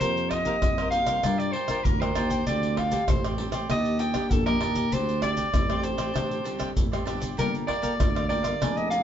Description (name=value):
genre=samba and choro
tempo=98 BPM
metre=4/4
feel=straight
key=G minor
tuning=A4 = 442 Hz
part: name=clear soprano saxophone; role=melody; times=0.0-9.0 s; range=A4 to G5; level=-28 LUFS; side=equal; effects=none
part: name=cavaquinho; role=accompaniment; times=0.0-9.0 s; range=D4 to Ab5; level=-34 LUFS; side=right 2 dB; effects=none
part: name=nylon-string guitar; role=accompaniment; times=0.0-9.0 s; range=A2 to Bb4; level=-34 LUFS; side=left 2 dB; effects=none
part: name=mellow tuba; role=bass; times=0.0-9.0 s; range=F1 to G2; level=-30 LUFS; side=right 1 dB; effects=none
part: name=maracas, surdo, pandeiro and tamborim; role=percussion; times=0.0-9.0 s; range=none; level=-28 LUFS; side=equal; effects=none
room=moderate studio reverb, RT60 0.9 s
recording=band playing live in one room, nothing above 7.6 kHz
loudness=-23 LUFS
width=side -10 dB against mid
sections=0.0-9.0 A section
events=none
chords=0.0 F9sus4; 1.2 Gm7; 2.5 D7sus4; 3.7 Ebmaj7; 4.9 D7sus4; 7.4 Gm9